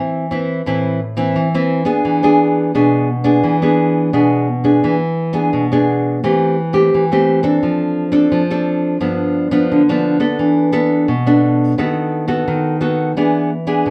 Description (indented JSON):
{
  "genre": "samba",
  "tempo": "86 BPM",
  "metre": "4/4",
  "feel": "straight",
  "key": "unclear",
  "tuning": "A4 = 439 Hz",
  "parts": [
    { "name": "nylon-string guitar", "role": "solo", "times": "0.0-13.9 s", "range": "G2 to A4", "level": "-16 LUFS", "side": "equal", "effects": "none" }
  ],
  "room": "wet studio reverb, RT60 0.5 s",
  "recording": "heard from further back in the room",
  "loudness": "-16 LUFS",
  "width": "mono",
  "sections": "0.0-4.8 A section; 4.8-13.9 B section",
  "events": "none",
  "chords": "0.0 Am; 2.1 E7; 6.2 Am7/E; 7.6 Dm7/F; 9.0 G7; 10.4 E7sus4; 11.8 B7/D#; 13.2 E7"
}